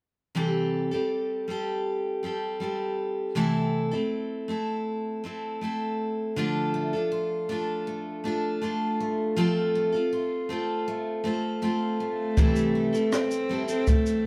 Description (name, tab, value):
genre	acoustic pop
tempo	80 BPM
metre	4/4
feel	straight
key	C major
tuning	A4 = 440 Hz
part	picked steel-string acoustic guitar	accompaniment	0.3-14.3 s	C3 to A4	-29 LUFS	equal	none
part	picked steel-string acoustic guitar	arpeggios	6.4-14.3 s	E3 to F4	-40 LUFS	equal	none
part	warm cello	melody	12.0-14.3 s	A3 to C4	-30 LUFS	equal	none
part	jazz brush drum kit	drums	12.4-14.2 s	kick drum, rim click, shaker	-26 LUFS	equal	none
room	moderate studio reverb, RT60 0.8 s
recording	band playing live in one room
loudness	-28 LUFS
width	mono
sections	0.4-12.4 A section; 12.4-14.3 B section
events	none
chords	0.4 C6; 3.4 Am/C; 6.4 Dm; 9.4 F; 12.4 C6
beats	| 0.36 1.11 1.86 2.61 | 3.37 4.12 4.87 5.62 | 6.37 7.12 7.87 8.62 | 9.37 10.12 10.87 11.62 | 12.37 13.12 13.87